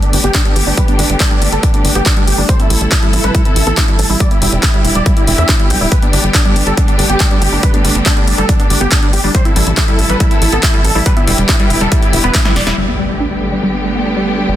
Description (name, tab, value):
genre	uplifting trance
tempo	140 BPM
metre	4/4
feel	straight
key	G major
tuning	A4 = 440 Hz
part	big supersaw lead	melody	0.0-12.7 s	D4 to G5	-19 LUFS	right 1 dB	sidechain pumping, low-pass filter, dub echo
part	warm studio string section	sustained chords	0.0-14.6 s	C3 to A4	-19 LUFS	right 1 dB	sidechain pumping, low-pass filter
part	analog pluck	arpeggios	0.0-14.6 s	G3 to D4	-21 LUFS	left 1 dB	chorus, sidechain pumping, tape echo
part	punchy analog drum machine	drums	0.0-12.8 s	handclaps, hi-hat, snare drum	-17 LUFS	left 1 dB	low-pass filter on hats, low-pass filter on snare, low-pass filter on cymbals, low-pass filter on room
part	tight sequencer bass	bass	0.1-14.6 s	D1 to E2	-17 LUFS	equal	sidechain pumping
part	electronic kick drum	drums	0.3-12.4 s	none	-13 LUFS	equal	none
part	impact	sound effects	12.8-14.5 s	none	-25 LUFS	right 1 dB	none
room	digital ambience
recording	dense, heavily limited modern master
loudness	-10 LUFS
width	side -12 dB against mid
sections	0.0-12.8 A section; 12.8-14.6 B section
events	filter sweep on synth arpeggio sound 0.0-12.8, 12.8-14.6; drum fill 12.3-12.8; impact 12.8-14.5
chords	0.0 Gadd9; 2.5 Am; 4.2 Em7; 5.9 Gadd9; 9.3 Am; 11.1 Em7; 12.8 Gadd9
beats	0.35 | 0.78 1.20 1.63 2.06 | 2.49 2.92 3.35 3.77 | 4.20 4.63 5.06 5.49 | 5.92 6.35 6.78 7.20 | 7.63 8.06 8.49 8.92 | 9.35 9.78 10.20 10.63 | 11.06 11.49 11.92 12.35 | 12.78 13.20 13.63 14.06 | 14.49